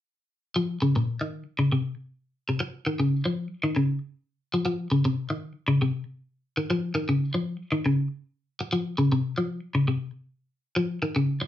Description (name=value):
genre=afrobeat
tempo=117 BPM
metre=4/4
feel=swing 53% on 16ths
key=Bb minor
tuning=A4 = 440 Hz
part: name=electric guitar at the edge of break-up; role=arpeggios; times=0.6-11.4 s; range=Bb2 to F3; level=-24 LUFS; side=left 1 dB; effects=phaser
room=wet studio ambience, RT60 0.5 s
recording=band playing live in one room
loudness=-25 LUFS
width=side -12 dB against mid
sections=0.6-11.5 A section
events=none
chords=none